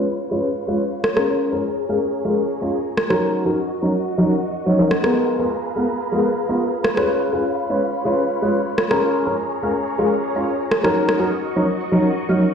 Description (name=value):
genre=filtered disco house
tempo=124 BPM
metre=4/4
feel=straight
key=unclear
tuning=A4 = 440 Hz
part: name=warm grand piano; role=accompaniment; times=0.0-12.4 s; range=F#3 to C#5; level=-19 LUFS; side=equal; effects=phaser, vintage 12-bit sampler grit, low-pass filter
part: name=phased string machine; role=sustained chords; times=0.0-12.5 s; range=E#4 to C#6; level=-26 LUFS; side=left 1 dB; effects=ensemble chorus, phaser, low-pass filter
part: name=electronic rim click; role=drums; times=1.0-11.2 s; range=none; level=-22 LUFS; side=equal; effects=none
part: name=tambourine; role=percussion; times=5.2-12.5 s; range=none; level=-64 LUFS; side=right 3 dB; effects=none
room=moderate digital room reverb, RT60 1.1 s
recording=played on a big sound system in a bare room, stone room reverb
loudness=-18 LUFS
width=side -7 dB against mid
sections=0.0-12.5 A section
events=filter sweep 0.0-12.5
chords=0.0 C#7; 1.3 A#m7; 3.2 D#m7; 5.2 G#m69; 6.8 C#7; 9.0 A#m7; 11.0 D#m7